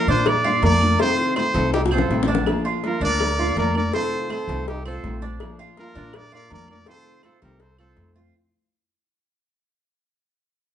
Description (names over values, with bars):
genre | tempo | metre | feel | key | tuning
latin, Cuban son and guajira | 164 BPM | 4/4 | straight | Bb major | A4 = 436 Hz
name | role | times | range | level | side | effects
bright trumpet | melody | 0.0-8.1 s | G4 to D5 | -24 LUFS | equal | none
nylon-string guitar | accompaniment | 0.0-8.3 s | C3 to F4 | -28 LUFS | left 2 dB | none
Cuban tres | arpeggios | 0.0-8.3 s | D4 to C5 | -27 LUFS | right 4 dB | none
upright bass | bass | 0.1-8.3 s | Bb1 to Bb2 | -25 LUFS | equal | none
congas | percussion | 0.1-8.3 s | none | -30 LUFS | left 2 dB | none
claves | percussion | 0.3-8.0 s | none | -38 LUFS | right 6 dB | none
cowbell and bongos | percussion | 0.3-8.2 s | none | -26 LUFS | left 4 dB | none
concert flute | second line | 1.7-8.1 s | Eb4 to Bb4 | -31 LUFS | right 2 dB | none
room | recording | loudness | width
moderate large studio reverb, RT60 1.0 s | band playing live in one room, nothing above 10.3 kHz | -18 LUFS | side -10 dB against mid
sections
0.0-8.3 A section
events
fade-out 0.0-8.3; drum fill 1.7-2.5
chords
0.0 Bb; 1.0 F7; 2.5 Bb; 3.9 F7; 5.4 Bb; 6.9 F7